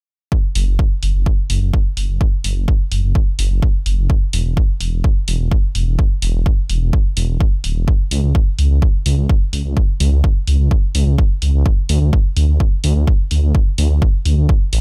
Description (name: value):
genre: melodic techno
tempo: 127 BPM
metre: 4/4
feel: straight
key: unclear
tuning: A4 = 441 Hz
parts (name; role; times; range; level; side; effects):
- electronic kick drum; drums; 0.3-14.6 s; none; -17 LUFS; equal; none
- dark detuned saw bass; bass; 0.6-14.8 s; D1 to D2; -18 LUFS; equal; sidechain pumping
- electronic hi-hat; drums; 0.6-14.8 s; none; -28 LUFS; equal; none
room: little or no reverb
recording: none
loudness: -16 LUFS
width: mono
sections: 0.3-14.8 A section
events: filter sweep on detuned saw bass 0.3-14.8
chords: none